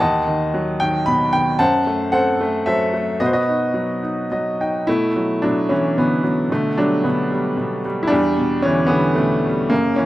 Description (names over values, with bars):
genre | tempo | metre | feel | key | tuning
classical, lyrical solo piano | 112 BPM | 3/4 | rubato | B minor from 4.9 s | A4 = 440 Hz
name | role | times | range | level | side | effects
bright upright piano | solo | 0.0-10.1 s | D#2 to B5 | -16 LUFS | equal | none
room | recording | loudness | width
light reverb | close, detailed microphones | -16 LUFS | side -16 dB against mid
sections
0.0-4.9 A section; 4.9-10.1 B section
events
upright piano fill 4.0-4.9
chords
0.0 B/D#; 1.6 F#dim; 3.2 B; 4.9 Bm7; 6.5 G/B; 8.1 Em7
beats
| 0.01 0.54 1.07 | 1.60 2.13 2.66 | 3.20 3.74 4.30 | 4.87 5.43 5.97 | 6.50 7.03 7.57 | 8.11 8.64 9.18 | 9.71